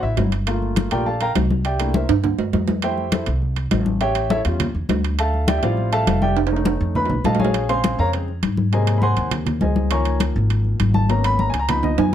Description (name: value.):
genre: Afro-Cuban jazz.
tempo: 203 BPM.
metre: 4/4.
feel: straight.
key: Bb minor from 7.5 s.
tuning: A4 = 440 Hz.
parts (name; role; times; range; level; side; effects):
warm baby grand piano; accompaniment; 0.0-12.1 s; C3 to Db6; -22 LUFS; left 1 dB; none.
upright bass; bass; 0.0-12.1 s; F1 to Ab2; -21 LUFS; equal; none.
congas; percussion; 0.0-12.1 s; none; -23 LUFS; left 4 dB; none.
timbales; percussion; 0.2-12.1 s; none; -25 LUFS; right 10 dB; none.
room: light reverb.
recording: dark, warm production.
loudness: -17 LUFS.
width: side -10 dB against mid.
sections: 0.0-7.5 A section; 7.5-12.1 A section.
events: grand piano solo 0.0-12.1; drum fill 2.1-2.8, 6.4-7.5, 11.8-12.1.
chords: 0.5 Gm9; 1.7 C13; 2.8 Fmaj9; 4.0 A7b13; 5.2 Dm11; 6.4 F7alt; 7.5 Bbm9; 8.7 Ab7; 9.9 Db69; 11.1 Abm11.